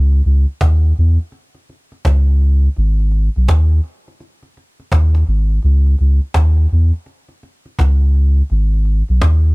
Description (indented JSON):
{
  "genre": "roots reggae",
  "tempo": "84 BPM",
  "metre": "4/4",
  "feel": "swing 64% on 16ths",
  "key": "unclear",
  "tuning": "A4 = 439 Hz",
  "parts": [
    { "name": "soft dub sub bass", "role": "bass", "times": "0.0-9.5 s", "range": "G#1 to E2", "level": "-11 LUFS", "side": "equal", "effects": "none" },
    { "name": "cajon", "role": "drums", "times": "0.1-9.5 s", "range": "none", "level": "-20 LUFS", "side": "equal", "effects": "none" }
  ],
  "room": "small room ambience",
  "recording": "dry, close 1970s-style studio recording",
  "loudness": "-12 LUFS",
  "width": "side -27 dB against mid",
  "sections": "0.0-9.5 A section",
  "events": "none",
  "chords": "none"
}